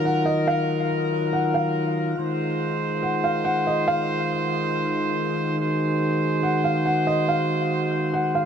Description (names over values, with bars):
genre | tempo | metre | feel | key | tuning
hip hop | 141 BPM | 4/4 | half-time | unclear | A4 = 440 Hz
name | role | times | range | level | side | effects
felt-muted upright piano | melody | 0.0-8.5 s | Eb5 to Gb5 | -26 LUFS | equal | low-pass filter, ping-pong delay
mellow brass ensemble | sustained chords | 0.0-8.5 s | Eb3 to C5 | -22 LUFS | equal | none
room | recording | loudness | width
light reverb, small room ambience | dark, warm production | -21 LUFS | side -7 dB against mid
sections
0.0-8.5 A section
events
none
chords
0.0 Ebmadd9; 2.2 Fm7; 5.6 Ab7